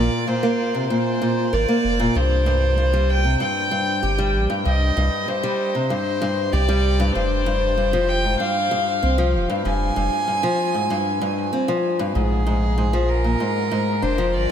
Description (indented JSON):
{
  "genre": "folktronica",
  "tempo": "96 BPM",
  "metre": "4/4",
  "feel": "straight",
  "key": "Bb mixolydian",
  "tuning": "A4 = 441 Hz",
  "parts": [
    { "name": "rich violin", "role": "melody", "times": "0.0-14.5 s", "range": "Ab4 to Ab5", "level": "-23 LUFS", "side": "left 1 dB", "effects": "ping-pong delay" },
    { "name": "fingerpicked old ladder-braced acoustic guitar", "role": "arpeggios", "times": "0.0-14.5 s", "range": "G2 to Bb4", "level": "-22 LUFS", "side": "equal", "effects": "ping-pong delay" },
    { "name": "warm sub bass", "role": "bass", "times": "0.0-14.5 s", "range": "Eb1 to C2", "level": "-21 LUFS", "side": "equal", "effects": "none" }
  ],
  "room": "moderate huge ambient reverb, RT60 7.8 s",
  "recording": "dreamy mix soaked in reverb",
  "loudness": "-18 LUFS",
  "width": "side -9 dB against mid",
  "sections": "0.0-12.2 A section; 12.2-14.5 B section",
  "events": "none",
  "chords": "0.0 Bbsus2; 2.2 C5; 7.2 Fmadd9; 12.2 Bb7(no3)",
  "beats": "0.28 0.90 1.53 | 2.15 2.78 3.40 4.03 | 4.65 5.28 5.90 6.53 | 7.15 7.78 8.40 9.03 | 9.65 10.28 10.90 11.53 | 12.15 12.78 13.40 14.03"
}